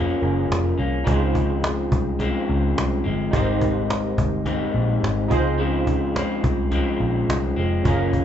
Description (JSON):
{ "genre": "indie pop, bedroom pop", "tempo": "106 BPM", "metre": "4/4", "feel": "straight", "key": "unclear", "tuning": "A4 = 441 Hz", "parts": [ { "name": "electric guitar through a small old amp", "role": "accompaniment", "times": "0.0-8.2 s", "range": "Gb2 to Eb4", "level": "-24 LUFS", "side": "left 2 dB", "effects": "warbly pitch drift" }, { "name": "warm analog keys", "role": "accompaniment", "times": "0.0-8.2 s", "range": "Db4 to C5", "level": "-29 LUFS", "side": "right 6 dB", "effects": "chorus" }, { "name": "vintage muted picked electric bass", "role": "bass", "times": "0.0-8.2 s", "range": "F1 to Db2", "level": "-24 LUFS", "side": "equal", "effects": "none" }, { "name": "cajon", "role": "drums", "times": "0.1-8.2 s", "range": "none", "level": "-25 LUFS", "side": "equal", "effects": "none" } ], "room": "moderate large studio reverb, RT60 0.9 s", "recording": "band playing live in one room, nothing above 7.8 kHz", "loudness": "-19 LUFS", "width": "side -9 dB against mid", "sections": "0.0-8.2 A section", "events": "none", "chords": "0.0 Gbmaj7; 1.1 Dbmaj7; 3.3 Abmaj7; 5.3 Dbmaj7" }